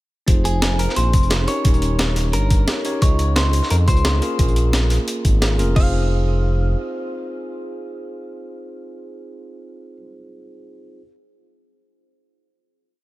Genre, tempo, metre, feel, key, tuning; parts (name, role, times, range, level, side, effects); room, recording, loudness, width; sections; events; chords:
liquid drum and bass; 175 BPM; 4/4; swing 54% on 16ths; F minor; A4 = 441 Hz
bell-like tine electric piano; accompaniment; 0.3-11.0 s; Bb3 to Eb5; -27 LUFS; equal; vintage 12-bit sampler grit, ping-pong delay
smooth synth bass; bass; 0.3-6.8 s; Eb1 to F2; -18 LUFS; equal; tube saturation
breakbeat sampler-style drum kit; drums; 0.3-5.7 s; hi-hat, snare drum; -24 LUFS; equal
crunchy breakbeat drum kit; drums; 0.3-5.7 s; hi-hat, snare drum; -30 LUFS; equal; high-pass filter on hats, high-pass filter on snare, high-pass filter on room
pop drum kit; drums; 0.3-5.8 s; crash cymbal, kick drum; -17 LUFS; equal; overdrive
clean electric guitar; melody; 0.5-10.0 s; Ab4 to F5; -27 LUFS; left 1 dB; ping-pong delay
digital ambience; -16 LUFS; side -18 dB against mid
0.3-5.8 drop; 5.8-8.5 final chord
drop 0.3-5.8
0.3 Fm7; 1.5 Eb7; 3.0 Dbmaj9; 4.2 Bbm7; 5.8 Fm7